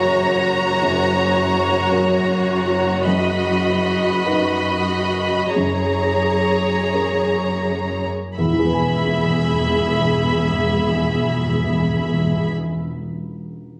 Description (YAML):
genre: cinematic, emotional film score for orchestra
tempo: 41-57 BPM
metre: 4/4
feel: rubato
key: E lydian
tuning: A4 = 440 Hz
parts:
  - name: rich studio violin section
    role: melody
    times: 0.0-12.5 s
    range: A#5 to B5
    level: -27 LUFS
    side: equal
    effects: none
  - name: clear studio violin section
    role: second line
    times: 0.0-12.5 s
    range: C#5 to E5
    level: -26 LUFS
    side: equal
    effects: none
  - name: dark baby grand piano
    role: accompaniment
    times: 0.0-13.8 s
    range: F#1 to G#5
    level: -28 LUFS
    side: equal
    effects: none
  - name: dark studio viola section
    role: accompaniment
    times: 0.0-12.5 s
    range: F#4 to G#4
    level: -26 LUFS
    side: equal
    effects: none
  - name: rich studio double bass section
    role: bass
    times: 0.0-12.5 s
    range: E1 to F#1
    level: -30 LUFS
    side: equal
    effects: none
  - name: warm studio cello section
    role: bass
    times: 0.0-12.5 s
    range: E2 to F#2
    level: -27 LUFS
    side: equal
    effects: none
  - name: timpani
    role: percussion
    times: 8.4-12.5 s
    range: E2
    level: -25 LUFS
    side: equal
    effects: none
room: moderate scoring stage reverb, RT60 1.6 s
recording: recorded on a phone in the room, club reverb, compression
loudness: -19 LUFS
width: mono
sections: 0.0-8.4 A section; 8.4-13.8 B section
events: slowing down 0.0-8.4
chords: 0.0 F#; 3.1 B/F#; 5.5 F#add9; 8.4 E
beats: 0.82 1.91 | 3.05 4.24 5.55 6.92 | 8.37 9.82 11.29 12.75